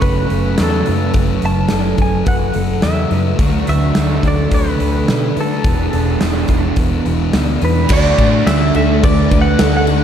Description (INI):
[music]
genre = rock, shoegaze and dream pop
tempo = 106 BPM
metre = 4/4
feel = straight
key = unclear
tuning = A4 = 438 Hz
[part]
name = direct-recorded clean electric guitar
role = melody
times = 0.0-10.0 s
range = A4 to A5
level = -22 LUFS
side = equal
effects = analog chorus, analog delay
[part]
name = fingerpicked twelve-string acoustic guitar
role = arpeggios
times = 0.0-10.0 s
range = F#4 to D5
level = -24 LUFS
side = right 4 dB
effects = analog chorus, analog delay
[part]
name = crunchy overdriven guitar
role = riff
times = 0.0-10.0 s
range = D3 to G#4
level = -20 LUFS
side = right 8 dB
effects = reverse reverb
[part]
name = thick fuzz guitar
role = riff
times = 0.0-10.0 s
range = E2 to D4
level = -20 LUFS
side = left 8 dB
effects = distortion, wide subtle chorus
[part]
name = vintage muted fingered electric bass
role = bass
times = 0.0-10.0 s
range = E1 to D3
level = -18 LUFS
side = equal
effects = none
[part]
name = huge arena drum kit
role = drums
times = 0.0-10.0 s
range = crash cymbal, hi-hat, kick drum, snare drum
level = -18 LUFS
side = equal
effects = none
[sound]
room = moderate plate reverb, RT60 2.1 s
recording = dreamy mix soaked in reverb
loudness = -12 LUFS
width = side -9 dB against mid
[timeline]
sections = 0.0-7.9 A section; 7.9-10.0 B section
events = none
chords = 0.0 F#m; 3.4 D; 5.7 E7sus4; 7.9 D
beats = 0.03 0.59 | 1.15 1.72 2.28 2.84 | 3.40 3.96 4.53 5.09 | 5.66 6.22 6.78 7.35 | 7.91 8.47 9.04 9.60